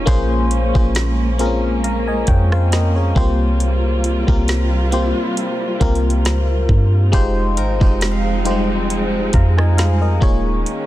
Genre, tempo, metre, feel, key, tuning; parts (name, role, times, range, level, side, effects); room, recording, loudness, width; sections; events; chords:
contemporary R&B; 68 BPM; 4/4; swing 54% on 16ths; F minor; A4 = 438 Hz
FM electric piano; accompaniment; 0.0-10.9 s; G3 to Bb5; -21 LUFS; left 2 dB; chorus
dark chamber string section; sustained chords; 0.0-10.9 s; C3 to F4; -24 LUFS; right 2 dB
soft 808-style bass; bass; 0.0-10.6 s; Eb1 to G2; -17 LUFS; equal
smooth R&B drum kit; drums; 0.1-10.9 s; hi-hat, kick drum, rim click, snare drum; -18 LUFS; equal; vintage 12-bit sampler grit
steel-string zither; texture; 7.6-9.8 s; Bb4 to F5; -31 LUFS; right 5 dB; digital delay
little or no reverb; dense, heavily limited modern master; -14 LUFS; side -15 dB against mid
0.0-10.9 A section
0.1 Bbm9; 3.2 C7sus4; 7.1 Fm7; 10.2 Eb7sus4